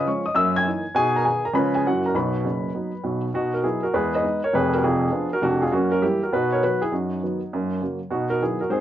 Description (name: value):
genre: jazz, stride piano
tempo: 201 BPM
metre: 4/4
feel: swing 64% on 8ths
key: B major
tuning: A4 = 440 Hz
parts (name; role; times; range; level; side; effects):
- warm upright piano; solo; 0.0-8.8 s; F1 to G#6; -20 LUFS; equal; none
room: moderate studio reverb, RT60 0.5 s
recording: worn, warbling old tape, cassette tape, warbly pitch drift, nothing above 7.5 kHz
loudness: -20 LUFS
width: side -11 dB against mid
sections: 0.0-3.3 A section; 3.3-8.8 A section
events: none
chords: 0.4 F#13; 1.0 B; 1.6 C#7; 1.8 F#7; 2.1 B; 3.9 Emaj7; 4.5 Fdim7; 5.7 F#7b9; 6.3 B; 6.9 B/F#; 7.5 F#; 8.1 B